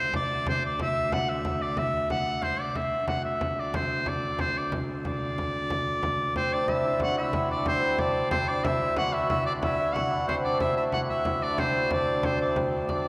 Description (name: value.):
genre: medieval dance.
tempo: 122 BPM (dotted quarters).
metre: 6/8.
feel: straight.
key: D mixolydian.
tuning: A4 = 437 Hz.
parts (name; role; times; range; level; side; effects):
clear shawm; melody; 0.0-13.1 s; C5 to F#5; -30 LUFS; equal; none.
clear viola da gamba; drone; 0.0-13.1 s; D2; -38 LUFS; equal; none.
frame drum; percussion; 0.1-13.1 s; none; -35 LUFS; equal; none.
hammered dulcimer; second line; 6.4-13.1 s; C4 to F#4; -30 LUFS; equal; none.
room: wet cathedral reverb, RT60 5.0 s.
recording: recorded in a church or concert hall.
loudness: -27 LUFS.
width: mono.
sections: 0.0-7.0 A section; 7.0-13.1 A section.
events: none.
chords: none.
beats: | 0.14 0.63 | 1.12 1.61 | 2.10 2.60 | 3.09 3.58 | 4.07 4.56 | 5.05 5.54 | 6.03 6.52 | 7.01 7.50 | 7.99 8.48 | 8.97 9.46 | 9.95 10.44 | 10.93 11.42 | 11.91 12.40 | 12.89.